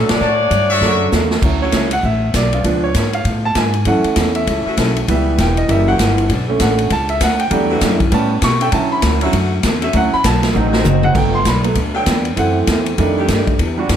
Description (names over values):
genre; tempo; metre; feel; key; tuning
jazz, big band swing; 197 BPM; 4/4; swing 62% on 8ths; D major; A4 = 440 Hz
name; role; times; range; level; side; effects
mellow saxophone section; melody; 0.0-1.3 s; F#3 to D5; -17 LUFS; left 2 dB; none
clear grand piano; accompaniment; 0.0-14.0 s; C#3 to C#6; -18 LUFS; right 2 dB; none
picked steel-string acoustic guitar; accompaniment; 0.0-14.0 s; F2 to C#5; -26 LUFS; left 5 dB; none
upright bass; bass; 0.0-14.0 s; E1 to D3; -18 LUFS; equal; none
swinging big-band drum kit; drums; 0.1-14.0 s; crash cymbal, hi-hat, kick drum, ride cymbal, snare drum, toms; -19 LUFS; equal; none
bright trumpet section; stabs; 0.2-1.1 s; D4 to C#6; -21 LUFS; left 2 dB; none
warm saxophone section; sustained chords; 1.6-2.6, 4.7-13.6 s; D3 to A4; -25 LUFS; left 2 dB; none
room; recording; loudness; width
light reverb; none; -13 LUFS; side -9 dB against mid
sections
0.0-1.4 A section; 1.4-11.2 B section; 11.2-14.0 B section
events
band accent 0.1; drum fill 0.8-1.4, 10.6-11.2; grand piano solo 1.4-14.0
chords
0.0 Dmaj7; 2.6 C#7b9; 3.9 F#m7; 5.1 C#m7b5; 5.7 F#7b9; 6.3 Bm9; 7.5 Em11; 8.1 A9; 8.7 Dmaj7; 10.6 D7b9; 11.2 Gmaj7; 12.4 F#m7b5; 13.0 F13